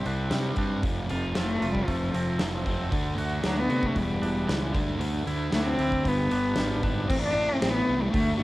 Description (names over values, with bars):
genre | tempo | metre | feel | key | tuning
quiet-loud alternative rock | 115 BPM | 4/4 | straight | A minor | A4 = 445 Hz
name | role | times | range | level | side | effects
rich cello | melody | 0.0-8.4 s | F3 to D4 | -28 LUFS | left 1 dB | cassette tape
twangy electric guitar | arpeggios | 0.0-7.1 s | E2 to G4 | -35 LUFS | right 2 dB | tremolo, cassette tape, analog delay
fuzz guitar | riff | 0.0-8.4 s | E2 to F#4 | -32 LUFS | equal | distortion, cassette tape
fuzz fingered electric bass | bass | 0.0-8.4 s | E1 to C3 | -31 LUFS | equal | overdrive
huge arena drum kit | drums | 0.1-8.3 s | crash cymbal, hi-hat, kick drum, snare drum | -31 LUFS | equal | cassette tape
room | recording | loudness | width
light reverb | home recording on cassette | -24 LUFS | side -18 dB against mid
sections
0.0-7.1 A section; 7.1-8.4 B section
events
none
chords
0.0 Csus2; 0.8 F; 2.9 D; 4.0 Em7; 4.8 Dsus2; 6.1 G; 7.1 Am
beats
0.31 | 0.83 1.35 1.88 2.40 | 2.92 3.44 3.97 4.49 | 5.01 5.53 6.05 6.58 | 7.10 7.62 8.14